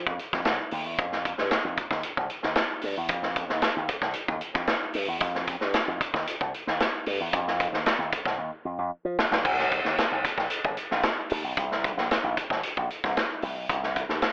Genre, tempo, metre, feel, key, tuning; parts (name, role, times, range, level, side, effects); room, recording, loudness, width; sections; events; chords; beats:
funk; 113 BPM; 4/4; straight; A4 = 442 Hz
slap bass with an envelope filter; bass; 0.0-14.2 s; G1 to F3; -30 LUFS; equal
vintage drum kit; drums; 0.1-14.3 s; crash cymbal, hi-hat, kick drum, snare drum; -26 LUFS; equal
light reverb; telephone sound; -25 LUFS; side -33 dB against mid
0.0-9.4 A section; 9.4-14.3 B section
drum fill 8.4-9.4
0.45 | 0.98 1.51 2.04 2.57 | 3.10 3.62 4.15 4.68 | 5.21 5.74 6.27 6.80 | 7.33 7.86 8.39 8.92 | 9.45 9.98 10.51 11.04 | 11.57 12.10 12.63 13.16 | 13.69 14.22